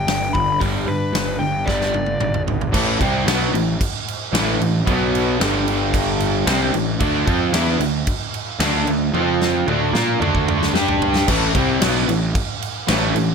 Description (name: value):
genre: hard rock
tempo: 112 BPM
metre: 4/4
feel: straight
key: A minor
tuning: A4 = 442 Hz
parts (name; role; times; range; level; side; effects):
- biting lead guitar; melody; 0.0-2.4 s; B4 to B5; -23 LUFS; left 3 dB; overdrive, plate reverb, tape echo
- cranked stack guitar; riff; 0.0-13.3 s; G2 to Bb4; -24 LUFS; right 14 dB; overdrive
- overdriven semi-hollow guitar; riff; 0.0-13.3 s; G2 to Bb4; -24 LUFS; left 14 dB; none
- fuzz picked electric bass; bass; 0.0-13.3 s; G1 to Bb2; -23 LUFS; equal; overdrive
- big rock drum kit; drums; 0.1-13.3 s; crash cymbal, hi-hat, kick drum, snare drum, toms; -22 LUFS; equal; none
- overdriven electric guitar; riff; 2.7-13.3 s; G2 to Bb4; -23 LUFS; right 2 dB; harmonic tremolo
room: light reverb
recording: none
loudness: -17 LUFS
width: side -6 dB against mid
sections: 0.0-2.7 A section; 2.7-11.3 B section; 11.3-13.3 B section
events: drum fill 1.7-2.7, 9.1-11.3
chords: 0.0 G; 2.7 Am; 4.9 B5; 5.4 G5; 6.5 Am; 7.0 D5; 9.1 F5; 9.7 D5; 10.7 G5; 11.3 Am